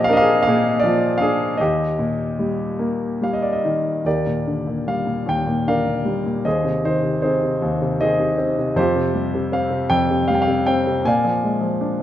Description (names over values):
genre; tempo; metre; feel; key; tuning
classical, lyrical solo piano; 71-80 BPM; 3/4; rubato; Eb major; A4 = 441 Hz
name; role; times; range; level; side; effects
warm grand piano; solo; 0.0-12.0 s; Eb2 to Ab5; -17 LUFS; equal; none
room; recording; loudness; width
moderate concert hall reverb, RT60 1.9 s; minimal, uncompressed stereo recording; -18 LUFS; side -12 dB against mid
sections
0.0-4.1 A section; 4.1-12.0 B section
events
none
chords
0.0 Bb; 1.6 Eb; 6.5 Ab/Eb; 8.8 Fsus2; 11.1 Bb7